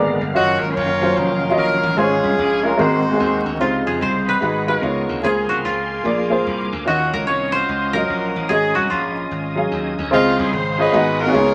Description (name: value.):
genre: uptempo gospel.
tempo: 147 BPM.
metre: 4/4.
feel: swing 64% on 8ths.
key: Db major.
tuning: A4 = 440 Hz.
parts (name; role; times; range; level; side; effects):
warm upright piano; accompaniment; 0.0-11.5 s; Ab2 to F5; -22 LUFS; equal; none.
bright tonewheel organ; sustained chords; 0.0-11.5 s; D3 to Eb6; -29 LUFS; equal; fast rotary speaker, chorus vibrato.
glassy slap bass; bass; 0.0-11.5 s; F1 to F2; -29 LUFS; equal; none.
clear horn section; melody; 0.3-11.5 s; Ab3 to Db5; -24 LUFS; equal; none.
koto; melody; 3.6-11.1 s; F4 to Db5; -24 LUFS; equal; none.
room: wet studio reverb, RT60 0.6 s.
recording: vinyl crackle.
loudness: -19 LUFS.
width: mono.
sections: 0.0-3.6 A section; 3.6-10.1 B section; 10.1-11.5 A section.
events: none.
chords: 0.4 Ebm9/Gb; 2.0 Db/Ab; 2.8 Ab9; 3.6 Dbmaj9; 4.4 Abm7; 4.8 Db9; 5.2 Gbmaj9#11; 6.0 Bb7; 6.9 Ebm9; 8.5 Ab7sus4; 10.1 Dbmaj9; 10.9 Abm7.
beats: | 0.35 0.76 1.16 1.57 | 1.98 2.38 2.79 3.19 | 3.60 4.01 4.42 4.83 | 5.23 5.64 6.05 6.46 | 6.87 7.28 7.68 8.09 | 8.50 8.91 9.31 9.72 | 10.13 10.53 10.94 11.34.